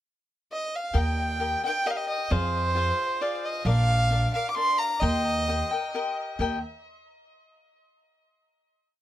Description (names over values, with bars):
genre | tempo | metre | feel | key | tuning
mexican folk, mariachi | 133 BPM | 3/4 | straight | Eb major | A4 = 440 Hz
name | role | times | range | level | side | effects
dark violin | melody | 0.5-5.9 s | C5 to D6 | -27 LUFS | right 1 dB | tape echo
cavaquinho | accompaniment | 0.9-6.6 s | D4 to G5 | -32 LUFS | left 5 dB | none
upright bass | bass | 0.9-6.6 s | Bb1 to F2 | -25 LUFS | equal | none
room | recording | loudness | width
light reverb | close, detailed microphones | -24 LUFS | side -13 dB against mid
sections
0.0-0.9 pickup bar; 0.9-6.4 A section; 6.4-7.7 final chord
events
none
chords
0.0 N.C.; 0.9 Eb; 2.3 Fm; 3.7 Bb; 5.0 Eb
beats
0.04 0.49 | 0.94 1.40 1.85 | 2.31 2.76 3.21 | 3.66 4.11 4.56 | 5.01 5.47 5.93 | 6.39